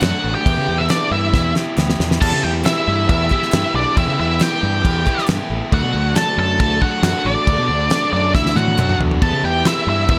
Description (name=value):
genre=classic rock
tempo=137 BPM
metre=4/4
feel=straight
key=E minor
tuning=A4 = 440 Hz
part: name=octave-fuzz lead guitar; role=melody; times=0.0-10.2 s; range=D5 to A5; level=-23 LUFS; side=equal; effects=distortion, plate reverb
part: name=octave-fuzz lead guitar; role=second line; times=0.0-10.2 s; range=D4 to A4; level=-28 LUFS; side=equal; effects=distortion
part: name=biting overdriven guitar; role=riff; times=0.0-10.2 s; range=D3 to G4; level=-25 LUFS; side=equal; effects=none
part: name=growling fingered electric bass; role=bass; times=0.0-10.2 s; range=A1 to C#3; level=-23 LUFS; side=equal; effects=overdrive
part: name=damped 70s drum kit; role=drums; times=0.0-10.2 s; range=crash cymbal, kick drum, snare drum, toms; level=-22 LUFS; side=equal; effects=none
part: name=group handclap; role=percussion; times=0.0-9.8 s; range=none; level=-38 LUFS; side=equal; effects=none
room=light reverb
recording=none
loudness=-17 LUFS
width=mono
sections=0.0-2.2 A section; 2.2-10.2 A section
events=drum fill 1.3-2.2, 8.3-9.2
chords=0.5 Em; 5.7 D; 9.2 Em